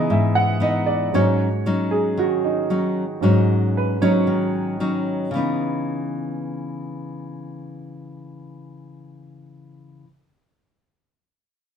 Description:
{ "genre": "bossa nova", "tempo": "115 BPM", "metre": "4/4", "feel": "straight", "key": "C# minor", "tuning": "A4 = 440 Hz", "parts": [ { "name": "clear grand piano", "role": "accompaniment", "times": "0.0-5.3 s", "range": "G#2 to F#5", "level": "-22 LUFS", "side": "right 5 dB", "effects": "none" }, { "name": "nylon-string guitar", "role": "accompaniment", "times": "0.0-10.1 s", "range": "G#2 to D#4", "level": "-22 LUFS", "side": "left 2 dB", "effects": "none" } ], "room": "moderate studio reverb, RT60 0.7 s", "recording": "minimal, uncompressed stereo recording", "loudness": "-19 LUFS", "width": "side -8 dB against mid", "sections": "0.0-5.3 A section; 5.3-9.5 B section", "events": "grand piano solo 0.0-5.3", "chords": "0.0 C#m9; 1.1 G#7sus4; 5.3 C#m9" }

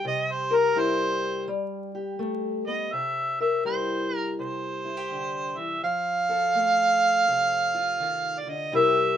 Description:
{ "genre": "acoustic country blues, solo or duo", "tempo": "83 BPM", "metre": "4/4", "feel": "swing 64% on 8ths", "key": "C mixolydian", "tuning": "A4 = 441 Hz", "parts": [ { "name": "mellow harmonica", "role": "melody", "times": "0.0-9.2 s", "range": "Bb4 to F5", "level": "-24 LUFS", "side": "right 2 dB", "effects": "none" }, { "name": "fingerpicked steel-string acoustic guitar", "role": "accompaniment", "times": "0.0-9.2 s", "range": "C3 to Bb4", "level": "-28 LUFS", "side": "left 4 dB", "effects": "none" } ], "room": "light reverb", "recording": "minimal, uncompressed stereo recording, vinyl crackle", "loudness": "-23 LUFS", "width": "side -10 dB against mid", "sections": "0.0-2.9 A section; 2.9-9.2 B section", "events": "harmonica solo 0.0-2.9", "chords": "0.0 C7; 1.5 G; 2.9 C7; 5.8 F7" }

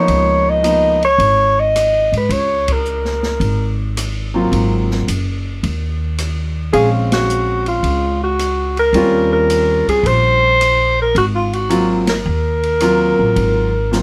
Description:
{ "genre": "jazz, small-group swing and bop", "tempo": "108 BPM", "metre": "4/4", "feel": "swing 69% on 8ths", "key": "Ab mixolydian", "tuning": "A4 = 439 Hz", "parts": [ { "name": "breathy alto saxophone", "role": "melody", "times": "0.0-14.0 s", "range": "F4 to Eb5", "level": "-17 LUFS", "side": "equal", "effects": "none" }, { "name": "warm concert grand piano", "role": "accompaniment", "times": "0.0-1.0, 4.3-14.0 s", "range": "F3 to F5", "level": "-21 LUFS", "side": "equal", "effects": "none" }, { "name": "upright bass", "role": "bass", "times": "0.1-14.0 s", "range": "Gb1 to Ab2", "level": "-22 LUFS", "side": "equal", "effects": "none" }, { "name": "open jazz drum kit", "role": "drums", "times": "0.1-14.0 s", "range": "hi-hat, kick drum, ride cymbal, rim click, snare drum", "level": "-29 LUFS", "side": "equal", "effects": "none" } ], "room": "light reverb", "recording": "none", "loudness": "-16 LUFS", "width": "mono", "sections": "0.0-14.0 A section", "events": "band accent 2.6, 7.0, 12.0", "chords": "0.0 Db13; 4.5 Ab13; 6.7 Bbm7; 8.9 Eb13; 11.2 Ab13" }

